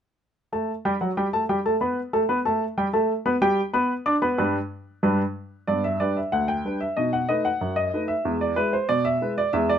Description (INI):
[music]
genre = ragtime piano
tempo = 93 BPM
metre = 2/4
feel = straight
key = G major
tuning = A4 = 440 Hz
[part]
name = warm upright piano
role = solo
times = 0.5-9.8 s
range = D2 to D6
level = -21 LUFS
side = equal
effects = none
[sound]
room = light reverb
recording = close, detailed microphones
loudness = -22 LUFS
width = side -8 dB against mid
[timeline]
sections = 0.5-5.7 A section; 5.7-9.8 B section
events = none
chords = 0.5 G; 7.0 B7; 8.3 E7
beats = | 0.52 1.17 | 1.81 2.45 | 3.10 3.74 | 4.38 5.03 | 5.68 6.32 | 6.97 7.61 | 8.25 8.89 | 9.54